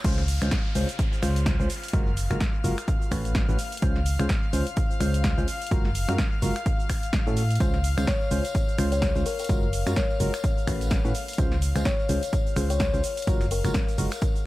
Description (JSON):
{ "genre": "piano house", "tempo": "127 BPM", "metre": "4/4", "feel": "swing 58% on 16ths", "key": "Db major", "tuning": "A4 = 440 Hz", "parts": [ { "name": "warm studio violin section", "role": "sustained chords", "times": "0.0-14.5 s", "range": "F5 to F6", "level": "-37 LUFS", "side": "left 3 dB", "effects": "sidechain pumping" }, { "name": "percussive organ stab", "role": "riff", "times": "0.0-14.1 s", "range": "A2 to C5", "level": "-32 LUFS", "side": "equal", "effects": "chorus, cassette tape, sidechain pumping, analog delay" }, { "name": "solid FM bass", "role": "bass", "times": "0.0-14.1 s", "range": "Gb1 to A2", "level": "-26 LUFS", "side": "equal", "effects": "sidechain pumping" }, { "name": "electronic kick drum", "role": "drums", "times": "0.0-14.3 s", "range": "none", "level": "-26 LUFS", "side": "equal", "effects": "studio ambience" }, { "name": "house drum kit", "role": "drums", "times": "0.0-14.4 s", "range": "cabasa, crash cymbal, finger snaps, hi-hat, snare drum", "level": "-33 LUFS", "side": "equal", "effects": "studio ambience" }, { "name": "swell and downlifter", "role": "sound effects", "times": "0.0-3.8 s", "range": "none", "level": "-40 LUFS", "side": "equal", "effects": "none" }, { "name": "tambourine", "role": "percussion", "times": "7.6-14.4 s", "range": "none", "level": "-44 LUFS", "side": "right 1 dB", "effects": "none" }, { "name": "kalimba", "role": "melody", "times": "8.1-14.0 s", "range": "Bb4 to Db5", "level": "-31 LUFS", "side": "left 4 dB", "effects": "analog delay" } ], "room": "light reverb", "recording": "echo-heavy mix", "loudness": "-22 LUFS", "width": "side -18 dB against mid", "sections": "0.0-14.5 A section", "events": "drop 0.0-14.5", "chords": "0.0 Dbmaj7; 1.9 Gbmaj9; 2.9 A69; 3.8 Dbmaj7; 5.7 Gbmaj9; 6.7 A6; 7.6 Dbmaj7; 9.5 Gbmaj9; 10.4 A69; 11.4 Dbmaj7; 13.3 Gbmaj9", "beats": "| 0.04 0.52 0.99 1.46 | 1.94 2.41 2.88 3.35 | 3.83 4.30 4.77 5.24 | 5.71 6.19 6.66 7.13 | 7.61 8.08 8.55 9.02 | 9.49 9.97 10.44 10.91 | 11.38 11.86 12.33 12.80 | 13.27 13.75 14.22" }